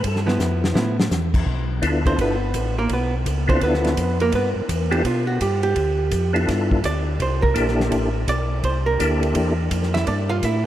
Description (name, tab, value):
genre	soul jazz organ trio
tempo	167 BPM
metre	4/4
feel	swing 65% on 8ths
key	G mixolydian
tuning	A4 = 441 Hz
part	percussive tonewheel organ	melody	0.0-9.5 s	Bb3 to A4	-25 LUFS	left 1 dB	slow rotary speaker, chorus vibrato
part	mellow tonewheel organ	bass	0.0-10.7 s	G1 to B2	-23 LUFS	equal	slow rotary speaker
part	warm soul drum kit	drums	0.0-10.5 s	crash cymbal, hi-hat, kick drum, ride cymbal, snare drum	-26 LUFS	equal	none
part	archtop guitar, miked and amplified	accompaniment	0.3-10.7 s	F3 to F5	-24 LUFS	right 3 dB	none
room	wet cathedral reverb, RT60 6.0 s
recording	in a vast, echoing space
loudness	-18 LUFS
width	side -12 dB against mid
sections	0.0-1.5 A section; 1.5-10.7 A section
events	drum fill 0.4-1.1; hollow-body jazz guitar solo 1.5-10.7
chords	0.0 G13; 5.8 Dm; 6.5 G13; 7.2 C13; 10.1 G7sus2